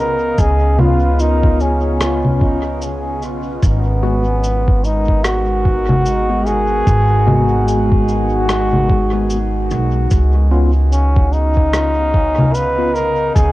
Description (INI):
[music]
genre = ambient dub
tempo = 74 BPM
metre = 4/4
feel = swing 59% on 16ths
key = G# dorian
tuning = A4 = 440 Hz
[part]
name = clear trombone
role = melody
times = 0.0-13.5 s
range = B3 to B4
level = -18 LUFS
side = equal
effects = dub echo
[part]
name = warbly tape-like pad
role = sustained chords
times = 0.0-13.5 s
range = C#3 to F#5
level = -25 LUFS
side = right 1 dB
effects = chorus, built-in reverb, cassette tape
[part]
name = upright bass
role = bass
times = 0.0-13.5 s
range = G#1 to C#2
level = -17 LUFS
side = equal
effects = none
[part]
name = electronic cabasa, congas and rim click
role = drums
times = 0.4-13.5 s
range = none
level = -19 LUFS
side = left 1 dB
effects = cassette tape, dub echo
[part]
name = electronic kick drum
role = drums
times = 0.4-13.5 s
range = none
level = -14 LUFS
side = equal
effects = cassette tape
[part]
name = tine electric piano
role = stabs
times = 0.8-12.9 s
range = G#3 to F#4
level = -23 LUFS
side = left 2 dB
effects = medium stereo tremolo, cassette tape, dub echo
[sound]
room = light reverb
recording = home recording on cassette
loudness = -13 LUFS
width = side -17 dB against mid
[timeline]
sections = 0.0-13.5 A section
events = none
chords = 0.0 C#7; 3.6 G#m7; 10.1 C#7